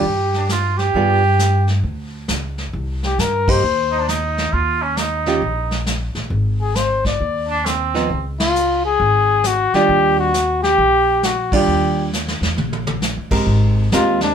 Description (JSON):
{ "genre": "jazz, small-group swing and bop", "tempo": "134 BPM", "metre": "4/4", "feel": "swing 65% on 8ths", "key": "Eb major", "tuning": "A4 = 440 Hz", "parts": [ { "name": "warm flugelhorn", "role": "melody", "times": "0.0-14.3 s", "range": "D4 to D5", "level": "-16 LUFS", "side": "left 2 dB", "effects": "none" }, { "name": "archtop guitar, miked and amplified", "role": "accompaniment", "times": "0.0-14.3 s", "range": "Eb3 to Bb4", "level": "-19 LUFS", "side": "right 4 dB", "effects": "none" }, { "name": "upright bass", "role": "bass", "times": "0.0-14.3 s", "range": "G1 to G2", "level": "-21 LUFS", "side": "equal", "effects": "none" }, { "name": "vintage brush drum kit", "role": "drums", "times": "0.0-14.3 s", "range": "brushed snare drum, crash cymbal, hi-hat, kick drum, ride cymbal, snare drum, toms", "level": "-24 LUFS", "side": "equal", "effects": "none" }, { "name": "mellow trumpet", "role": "second line", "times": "0.4-8.2 s", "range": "C4 to G4", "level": "-20 LUFS", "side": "right 4 dB", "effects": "none" } ], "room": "moderate studio ambience, RT60 0.4 s", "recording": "band playing live in one room", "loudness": "-15 LUFS", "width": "side -8 dB against mid", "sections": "0.0-13.5 A section", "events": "band accent 3.4, 8.3, 11.5; drum fill 12.1-13.0", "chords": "0.0 Ebadd9 (rootless); 1.0 G7b9; 2.7 Cm; 4.5 Eb5; 6.3 Ab; 8.1 Db; 9.9 Ebmaj9; 13.5 Abmaj9" }